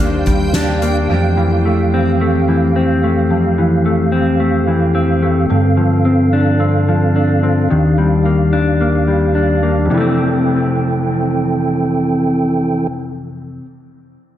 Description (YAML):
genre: dream pop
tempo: 109 BPM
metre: 4/4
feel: straight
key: unclear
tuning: A4 = 439 Hz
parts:
  - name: mellow tonewheel organ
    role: sustained chords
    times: 0.0-12.9 s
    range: Eb2 to G5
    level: -15 LUFS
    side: right 1 dB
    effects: chorus vibrato, stopped rotary speaker
  - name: mellow electric guitar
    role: arpeggios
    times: 0.0-13.7 s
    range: F2 to D4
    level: -15 LUFS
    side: left 2 dB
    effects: wide subtle chorus, dub echo
  - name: backwards swelling texture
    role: texture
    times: 0.0-0.9 s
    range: G5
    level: -28 LUFS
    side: right 3 dB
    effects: built-in reverb, dub echo
  - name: soft-mallet drum kit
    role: drums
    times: 0.3-0.9 s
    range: hi-hat, kick drum, snare drum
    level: -20 LUFS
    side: equal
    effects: dub echo
room: wet plate reverb, RT60 1.6 s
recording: echo-heavy mix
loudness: -12 LUFS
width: side -11 dB against mid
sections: 0.0-9.9 A section; 9.9-12.1 B section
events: none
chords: 0.0 Ebmaj7; 1.1 Fmaj7; 5.5 G7sus4; 7.7 Ebmaj7; 9.9 Fmaj7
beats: 0.55 | 1.09 1.65 2.20 2.75 | 3.30 3.85 4.40 4.95 | 5.50 6.05 6.60 7.15 | 7.70 8.25 8.80 9.35 | 9.90 10.45 11.00 11.55